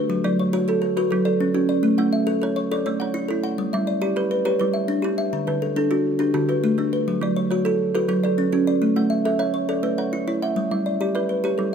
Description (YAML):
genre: southern african traditional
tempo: 138 BPM (dotted quarters)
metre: 12/8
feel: straight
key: A mixolydian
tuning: A4 = 439 Hz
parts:
  - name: kalimba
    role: arpeggios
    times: 0.0-11.7 s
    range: D3 to F#5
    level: -23 LUFS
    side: left 4 dB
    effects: none
  - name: kalimba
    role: arpeggios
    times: 0.0-11.7 s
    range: D3 to E5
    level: -22 LUFS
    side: right 5 dB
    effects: none
room: light reverb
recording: close, detailed microphones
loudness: -19 LUFS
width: side -7 dB against mid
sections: 0.0-8.8 A section; 8.8-11.7 A section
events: none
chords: 0.1 F#m; 1.8 A; 3.6 G; 5.3 D; 7.1 F#m; 8.8 A; 10.6 G